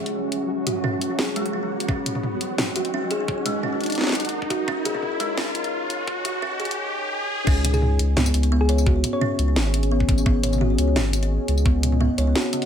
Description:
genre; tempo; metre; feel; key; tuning
half-time drum and bass; 172 BPM; 4/4; half-time; C# dorian; A4 = 439 Hz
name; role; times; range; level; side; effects
deep dark ambient pad; sustained chords; 0.0-12.7 s; C#4 to G#5; -29 LUFS; left 1 dB; chorus, built-in reverb, sidechain pumping
saturated sub bass; bass; 0.0-12.3 s; D#1 to C#2; -20 LUFS; equal; tube saturation, high-pass filter
riser; sound effects; 0.0-7.5 s; none; -30 LUFS; equal; none
flickering grainy texture; texture; 0.0-6.8 s; F#3 to F#4; -33 LUFS; equal; built-in reverb
drum and bass drum kit; drums; 0.1-12.7 s; crash cymbal, hi-hat, snare drum, tambourine, toms; -26 LUFS; equal; small room ambience
kalimba; arpeggios; 0.7-12.7 s; C#3 to C#5; -27 LUFS; right 1 dB; vintage 12-bit sampler grit, low-pass filter, ping-pong delay
electronic kick drum; drums; 1.9-11.7 s; none; -21 LUFS; equal; small room ambience
thumb-piano-like synth pluck; melody; 7.7-9.6 s; G#4 to C#5; -30 LUFS; left 2 dB; chorus, digital delay
room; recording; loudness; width
light reverb; high-pass filter; -20 LUFS; side -8 dB against mid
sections
0.0-7.5 A section; 7.5-12.7 B section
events
build-up 0.0-7.5; riser 0.0-7.5; filter sweep on kalimba 0.0-7.5; filter sweep 0.0-7.5; drop 7.5-12.7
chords
0.0 C#m; 1.9 D#m; 7.5 C#m

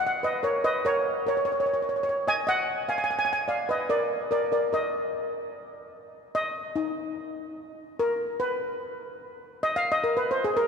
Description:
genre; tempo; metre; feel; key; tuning
calypso; 147 BPM; 4/4; straight; unclear; A4 = 441 Hz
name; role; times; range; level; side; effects
steel pan; solo; 0.0-10.7 s; Eb4 to Ab5; -25 LUFS; equal; none
room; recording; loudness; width
wet cathedral reverb, RT60 4.7 s; recorded in a church or concert hall; -24 LUFS; side -6 dB against mid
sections
0.0-6.4 A section; 6.4-10.7 B section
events
steel pan solo 6.4-10.7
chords
0.0 Bbmadd11; 1.5 Dbsus2; 3.1 Bb; 4.7 N.C.

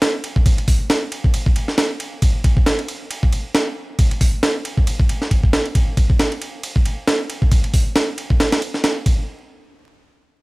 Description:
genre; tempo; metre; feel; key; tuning
breakbeat; 136 BPM; 4/4; swing 56% on 16ths; none; none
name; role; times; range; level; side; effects
breakbeat sampler-style drum kit; drums; 0.0-9.2 s; hi-hat, kick drum, ride cymbal, snare drum; -16 LUFS; equal; small room reverb
room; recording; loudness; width
little or no reverb; vinyl crackle; -16 LUFS; side -23 dB against mid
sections
0.0-9.3 A section; 9.3-10.4 B section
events
none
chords
none

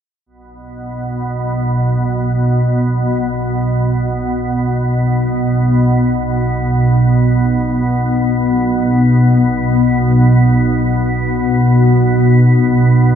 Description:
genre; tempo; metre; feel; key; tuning
ambient; free time; none; none; unclear; A4 = 438 Hz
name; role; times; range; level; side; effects
organ-like drone; drone; 0.8-13.2 s; B1 to B2; -12 LUFS; equal; ensemble chorus, built-in reverb
room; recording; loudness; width
wet echo chamber reverb, RT60 2.4 s; none; -12 LUFS; side -8 dB against mid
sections
0.3-13.2 A section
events
none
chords
none

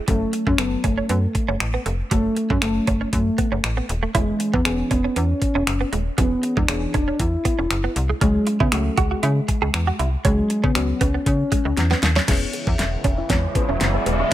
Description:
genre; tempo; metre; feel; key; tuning
dance-pop; 118 BPM; 4/4; straight; unclear; A4 = 445 Hz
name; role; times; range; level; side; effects
direct-recorded clean electric guitar; riff; 0.0-14.1 s; F#3 to G#4; -27 LUFS; right 6 dB; analog chorus, low-pass filter
mellow horn-like synth lead; melody; 0.1-14.3 s; G#3 to E5; -24 LUFS; equal; chorus, low-pass filter, tape echo
glassy wavetable pluck; accompaniment; 0.1-14.3 s; E3 to B4; -31 LUFS; left 2 dB; chorus, sidechain pumping, low-pass filter
slap-like FM bass; bass; 0.1-14.2 s; D#1 to C#3; -23 LUFS; equal; sidechain pumping
pop drum kit; drums; 0.1-14.2 s; crash cymbal, finger snaps, hi-hat, kick drum, snare drum; -23 LUFS; equal; none
filtered supersaw swell; sustained chords; 12.3-14.3 s; C#3 to E4; -30 LUFS; right 2 dB; sidechain pumping, low-pass filter
mallet-like synth pluck; arpeggios; 12.3-14.3 s; G#3 to E5; -33 LUFS; left 6 dB; chorus, sidechain pumping, low-pass filter, tape echo
riser; sound effects; 12.9-14.3 s; none; -28 LUFS; equal; none
room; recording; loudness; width
digital ambience; none; -18 LUFS; side -13 dB against mid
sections
0.0-12.3 A section; 12.3-14.3 B section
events
drum fill 11.8-12.3, 12.3-14.3; build-up 12.3-14.3; filter sweep 12.3-14.3; riser 12.9-14.3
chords
0.1 F#m; 4.1 E6; 8.2 C#sus4; 12.3 E6

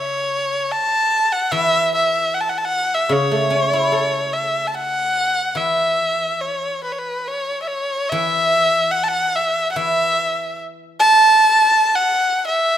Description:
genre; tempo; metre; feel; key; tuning
chinese traditional; 74 BPM; 4/4; rubato; unclear; A4 = 440 Hz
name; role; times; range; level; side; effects
rich erhu; melody; 0.0-12.8 s; B4 to A5; -16 LUFS; equal; none
guzheng; accompaniment; 0.0-12.2 s; C#3 to A4; -23 LUFS; equal; none
room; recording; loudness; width
moderate recital hall reverb, RT60 1.4 s; none; -16 LUFS; side -10 dB against mid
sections
0.0-8.1 A section; 8.1-12.8 B section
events
none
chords
none

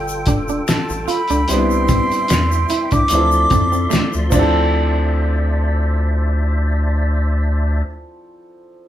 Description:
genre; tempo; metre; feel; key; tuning
R&B, neo-soul; 74 BPM; 4/4; swing 53% on 16ths; D dorian; A4 = 440 Hz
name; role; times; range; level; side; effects
breathy silver concert flute; melody; 0.0-4.1 s; G5 to D6; -19 LUFS; right 1 dB; none
clear upright piano; accompaniment; 0.0-8.9 s; E3 to A4; -23 LUFS; equal; none
percussive tonewheel organ; sustained chords; 0.0-7.8 s; F3 to C6; -26 LUFS; equal; overdrive, chorus vibrato, slow rotary speaker
rubbery square bass; bass; 0.0-7.8 s; E1 to F2; -18 LUFS; equal; none
tube shaker and finger snaps; percussion; 0.1-5.1 s; none; -31 LUFS; left 4 dB; none
electric guitar at the edge of break-up; second line; 0.3-4.8 s; A3 to F4; -23 LUFS; right 3 dB; none
cloth-damped thuddy drum kit; drums; 0.3-4.5 s; crash cymbal, hi-hat, kick drum, snare drum; -20 LUFS; left 1 dB; none
room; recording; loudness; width
moderate studio reverb, RT60 0.6 s; band playing live in one room; -14 LUFS; side -12 dB against mid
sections
0.0-4.7 A section; 4.7-8.0 B section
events
none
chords
0.0 G9; 1.5 Cmaj7; 3.1 Dm9

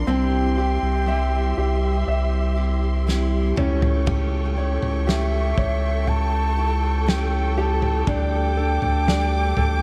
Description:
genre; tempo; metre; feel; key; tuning
pop ballad; 60 BPM; 4/4; straight; unclear; A4 = 440 Hz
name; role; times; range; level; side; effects
clear baby grand piano; accompaniment; 0.0-9.8 s; C4 to E5; -31 LUFS; equal; none
warm studio string section; sustained chords; 0.0-9.8 s; G4 to D6; -34 LUFS; equal; none
picked steel-string acoustic guitar; arpeggios; 0.0-9.8 s; C3 to A4; -32 LUFS; equal; delay
saturated sub bass; bass; 0.0-9.8 s; C2 to D2; -24 LUFS; equal; none
bansuri; melody; 0.1-9.8 s; E5 to A5; -29 LUFS; equal; delay
loose indie drum kit; drums; 3.1-9.8 s; kick drum, snare drum, toms; -28 LUFS; equal; none
room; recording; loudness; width
moderate plate reverb, RT60 3.4 s; dreamy mix soaked in reverb; -22 LUFS; mono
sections
0.0-9.8 A section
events
drum fill 3.1-4.1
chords
0.1 C; 3.6 A7/C#; 8.1 Dsus4

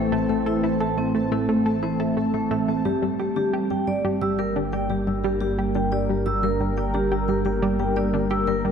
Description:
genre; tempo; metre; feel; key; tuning
ambient, sequencer-driven space music; 88 BPM; 4/4; straight; G minor; A4 = 439 Hz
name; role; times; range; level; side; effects
sweeping resonant pad; sustained chords; 0.0-8.7 s; E3 to Bb4; -25 LUFS; right 2 dB; chorus
analog pluck; riff; 0.0-8.7 s; G3 to A4; -27 LUFS; equal; chorus, ping-pong delay
analog drone; bass; 0.0-8.7 s; G1 to A1; -31 LUFS; equal; chorus
pulsing gated texture; texture; 0.0-2.9 s; A5; -39 LUFS; right 1 dB; chorus, built-in reverb
vibraphone with medium mallets; arpeggios; 0.3-8.6 s; A3 to E6; -26 LUFS; left 2 dB; auto-pan, ping-pong delay
room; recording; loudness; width
wet cathedral reverb, RT60 5.5 s; in a vast, echoing space; -21 LUFS; side -7 dB against mid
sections
0.0-2.9 A section; 2.9-8.7 B section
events
none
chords
0.0 Am; 2.9 Gm

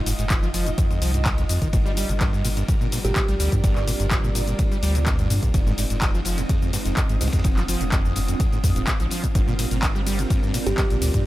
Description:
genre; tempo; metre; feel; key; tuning
acid house; 126 BPM; 4/4; straight; unclear; A4 = 440 Hz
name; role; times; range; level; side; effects
string machine, full ensemble; sustained chords; 0.0-11.3 s; G3 to Bb4; -33 LUFS; equal; ensemble chorus, sidechain pumping
warm sub bass; bass; 0.0-11.2 s; Eb1 to G2; -25 LUFS; equal; sidechain pumping
granular cloud pad; texture; 0.0-11.3 s; C4 to Eb6; -33 LUFS; right 3 dB; built-in reverb, sidechain pumping
acid bass, saw; riff; 0.1-11.2 s; F2 to G3; -28 LUFS; equal; overdrive, wide subtle chorus, sidechain pumping
crunchy breakbeat drum kit; drums; 0.1-11.1 s; ride cymbal, snare drum; -39 LUFS; equal; high-pass filter on cymbals, high-pass filter on snare, high-pass filter on room
punchy analog drum machine; drums; 0.1-11.2 s; handclaps, hi-hat, ride cymbal, shaker; -28 LUFS; left 1 dB; overdrive
electronic kick drum; drums; 0.3-11.2 s; none; -23 LUFS; equal; none
kalimba; melody; 3.0-3.4, 10.7-11.0 s; G4; -31 LUFS; right 2 dB; tape echo
room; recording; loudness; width
little or no reverb; none; -19 LUFS; side -16 dB against mid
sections
0.0-11.3 A section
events
none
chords
0.0 Fm7; 1.7 Gm7; 5.5 Fm7; 9.4 Gm7

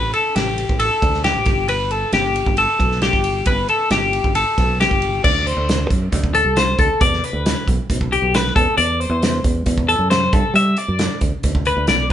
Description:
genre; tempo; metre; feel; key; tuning
math rock and midwest emo; 135 BPM; 4/4; straight; G major; A4 = 440 Hz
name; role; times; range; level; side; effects
twelve-string electric guitar; arpeggios; 0.0-12.1 s; G4 to E5; -18 LUFS; left 2 dB; none
fingered electric bass; bass; 0.0-12.1 s; G1 to G3; -22 LUFS; right 1 dB; none
loose indie drum kit; drums; 0.1-12.1 s; crash cymbal, hi-hat, kick drum, ride cymbal, snare drum; -20 LUFS; right 1 dB; none
room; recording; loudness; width
moderate studio reverb, RT60 0.8 s; band playing live in one room, nothing above 11.0 kHz; -15 LUFS; side -10 dB against mid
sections
0.0-5.2 A section; 5.2-12.1 B section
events
none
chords
0.0 N.C.; 1.5 Gadd9; 5.2 D7(no3); 7.0 Em7; 8.6 C6/E; 10.3 G

